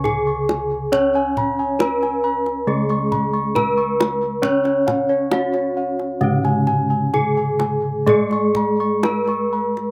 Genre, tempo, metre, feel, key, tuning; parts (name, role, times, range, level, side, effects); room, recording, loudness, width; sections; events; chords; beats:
Javanese gamelan; 61-68 BPM; 4/4; straight; A4 = 439 Hz
gamelan-type bronze metallophone; melody; 0.0-9.9 s; Db4 to Db5; -25 LUFS; equal; slapback echo
gamelan-type bronze metallophone; accompaniment; 0.0-9.9 s; Db3 to Db4; -26 LUFS; equal; slapback echo
gamelan-type bossed gongs; arpeggios; 0.0-9.8 s; Db5 to Db6; -25 LUFS; equal; slapback echo
gamelan-type bossed gongs; bass; 0.0-9.9 s; Db2 to Db5; -26 LUFS; equal
kendang; percussion; 0.1-9.9 s; -28 LUFS; equal
little or no reverb; recorded outdoors, with no room sound; -19 LUFS; mono
0.0-9.9 A section
0.04 | 0.92 1.80 2.67 3.55 | 4.43 5.31 6.21 7.13 | 8.07 9.03